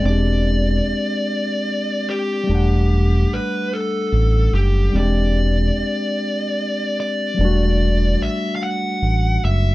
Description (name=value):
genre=R&B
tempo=49 BPM (dotted quarters)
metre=6/8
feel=straight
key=E minor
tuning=A4 = 440 Hz
part: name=fuzz lead guitar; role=melody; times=0.0-9.7 s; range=G4 to F#5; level=-23 LUFS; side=left 1 dB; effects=distortion
part: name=barky tine electric piano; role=accompaniment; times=0.0-9.7 s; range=F#3 to F#5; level=-23 LUFS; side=left 2 dB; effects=overdrive
part: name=smooth gliding synth bass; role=bass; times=0.0-9.7 s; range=E1 to A1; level=-17 LUFS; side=equal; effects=none
room=little or no reverb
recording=dark, warm production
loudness=-17 LUFS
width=side -18 dB against mid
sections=0.0-9.7 A section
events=none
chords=0.0 E7alt; 2.5 Em11; 4.9 E7alt; 7.4 Em11